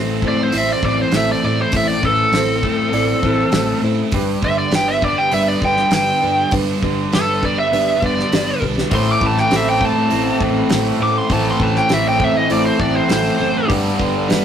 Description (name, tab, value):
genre	classic rock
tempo	100 BPM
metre	4/4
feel	straight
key	A minor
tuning	A4 = 440 Hz
part	reed electric piano	accompaniment	0.0-14.4 s	D4 to D5	-25 LUFS	right 2 dB	phaser
part	string machine, full ensemble	sustained chords	0.0-14.4 s	G3 to C5	-30 LUFS	right 1 dB	none
part	biting overdriven guitar	riff	0.0-14.4 s	G2 to E4	-24 LUFS	right 4 dB	spring reverb
part	overdriven semi-hollow guitar	riff	0.0-14.4 s	G2 to C4	-23 LUFS	left 4 dB	none
part	hollow-body short-scale fingered electric bass	bass	0.0-14.4 s	F#1 to A2	-25 LUFS	equal	none
part	damped 70s drum kit	drums	0.2-14.4 s	hi-hat, kick drum, snare drum	-22 LUFS	equal	none
part	biting lead guitar	melody	0.3-13.7 s	A4 to D6	-18 LUFS	equal	overdrive
part	overdriven electric guitar	riff	8.9-14.4 s	G2 to A3	-21 LUFS	left 1 dB	none
room	moderate small room reverb, RT60 0.5 s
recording	rough rehearsal-room recording, tube saturation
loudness	-14 LUFS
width	side -8 dB against mid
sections	0.0-14.4 A section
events	lead electric guitar solo 0.0-14.4; drum fill 8.6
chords	0.0 Am; 4.1 G; 8.9 Am; 13.7 G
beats	0.53 1.13 | 1.73 2.33 2.93 3.53 | 4.13 4.73 5.33 5.93 | 6.53 7.12 7.72 8.32 | 8.92 9.51 10.11 10.71 | 11.30 11.90 12.49 13.09 | 13.69 14.28